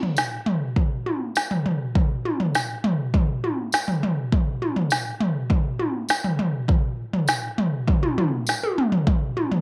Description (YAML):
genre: rock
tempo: 101 BPM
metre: 4/4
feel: straight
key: none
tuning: none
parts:
  - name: organic electronic drum kit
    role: drums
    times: 0.0-9.6 s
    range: kick drum, snare drum, toms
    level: -24 LUFS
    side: equal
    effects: none
  - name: tambourine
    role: percussion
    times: 0.2-8.6 s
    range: none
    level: -34 LUFS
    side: equal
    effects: none
room: light reverb, digital ambience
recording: none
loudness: -24 LUFS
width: mono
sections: 0.0-9.6 A section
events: drum fill 8.5-9.1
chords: none